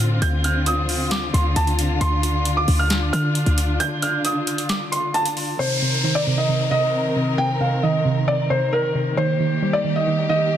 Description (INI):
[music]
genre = hip hop, trap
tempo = 134 BPM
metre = 4/4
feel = half-time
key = unclear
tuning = A4 = 444 Hz
[part]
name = felt-muted upright piano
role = melody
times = 0.0-10.6 s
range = Bb4 to G6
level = -23 LUFS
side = equal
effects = low-pass filter, ping-pong delay
[part]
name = warm symphonic string section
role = sustained chords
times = 0.0-10.6 s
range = D3 to Bb4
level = -26 LUFS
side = left 2 dB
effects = none
[part]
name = short 808-style bass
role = bass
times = 0.0-3.8 s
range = D2 to D3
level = -20 LUFS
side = equal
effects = none
[part]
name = booming analog drum machine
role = drums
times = 0.0-5.5 s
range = handclaps, hi-hat, snare drum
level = -26 LUFS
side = equal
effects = none
[part]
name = warbly dusty pluck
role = accompaniment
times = 5.6-10.6 s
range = C3 to G3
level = -22 LUFS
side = right 3 dB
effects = chorus, low-pass filter
[part]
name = downlifter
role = sound effects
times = 5.6-9.2 s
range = none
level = -27 LUFS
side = equal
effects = none
[sound]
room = little or no reverb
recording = dense, heavily limited modern master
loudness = -18 LUFS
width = side -10 dB against mid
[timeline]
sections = 0.0-5.6 A section; 5.6-10.6 B section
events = break 3.8-5.6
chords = 0.0 Dm7; 5.6 Cm7; 9.2 Eb